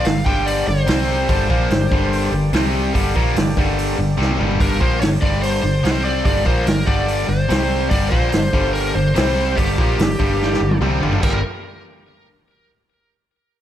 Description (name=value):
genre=blues rock power trio and southern rock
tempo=145 BPM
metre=4/4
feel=straight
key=G minor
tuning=A4 = 443 Hz
part: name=bluesy overdriven lead guitar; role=melody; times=0.0-11.4 s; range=G4 to G5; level=-23 LUFS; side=equal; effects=distortion, slapback echo
part: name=overdriven tonewheel organ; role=sustained chords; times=0.0-11.5 s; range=A3 to D5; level=-31 LUFS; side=right 2 dB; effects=none
part: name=distorted electric guitar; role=riff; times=0.0-11.4 s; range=G2 to C4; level=-20 LUFS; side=left 1 dB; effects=overdrive
part: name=vintage muted fingered electric bass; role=bass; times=0.0-11.4 s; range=G1 to C2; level=-22 LUFS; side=equal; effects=none
part: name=vintage drum kit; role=drums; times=0.0-11.3 s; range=crash cymbal, hi-hat, kick drum, snare drum, toms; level=-21 LUFS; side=equal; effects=none
room=moderate scoring stage reverb, RT60 1.5 s, studio reverb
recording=big arena sound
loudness=-15 LUFS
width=side -11 dB against mid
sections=0.0-11.2 A section; 11.2-12.9 B section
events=drum fill 4.2-4.6, 10.4-11.2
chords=0.0 Gm; 0.9 C5; 1.3 Gm; 2.5 C5; 2.9 Gm; 5.8 C5; 6.3 Gm; 7.5 C5; 7.9 Gm; 9.2 C5; 9.6 Gm; 11.2 Gm9